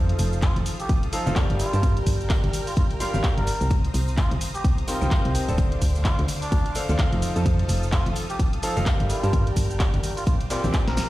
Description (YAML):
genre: piano house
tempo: 128 BPM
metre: 4/4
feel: swing 58% on 16ths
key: unclear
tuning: A4 = 438 Hz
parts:
  - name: analog string pad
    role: sustained chords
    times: 0.0-11.1 s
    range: A4 to F6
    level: -37 LUFS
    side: equal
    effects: ensemble chorus, sidechain pumping
  - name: clear grand piano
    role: riff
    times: 0.0-11.0 s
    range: Bb2 to A5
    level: -30 LUFS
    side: left 1 dB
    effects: sidechain pumping, dub echo
  - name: solid FM bass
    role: bass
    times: 0.0-11.0 s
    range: D1 to G2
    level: -24 LUFS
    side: equal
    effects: sidechain pumping
  - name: house drum kit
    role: drums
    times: 0.1-11.1 s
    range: handclaps, hi-hat, shaker, snare drum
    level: -32 LUFS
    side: equal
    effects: none
  - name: tambourine and congas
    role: percussion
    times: 0.1-11.1 s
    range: none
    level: -35 LUFS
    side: left 3 dB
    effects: none
  - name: trumpet with cup mute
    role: melody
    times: 0.4-11.1 s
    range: D4 to Bb4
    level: -33 LUFS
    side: right 1 dB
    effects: dub echo
  - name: electronic kick drum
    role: drums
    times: 0.4-10.8 s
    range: none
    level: -22 LUFS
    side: equal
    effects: none
room: little or no reverb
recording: played on a big sound system in a bare room, stone room reverb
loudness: -20 LUFS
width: side -16 dB against mid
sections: 0.0-11.1 A section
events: drum fill 10.9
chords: 0.0 F7; 1.6 Gm7; 3.7 Cm7; 5.6 Dm7; 7.2 F7; 9.1 Gm7; 10.3 Bb69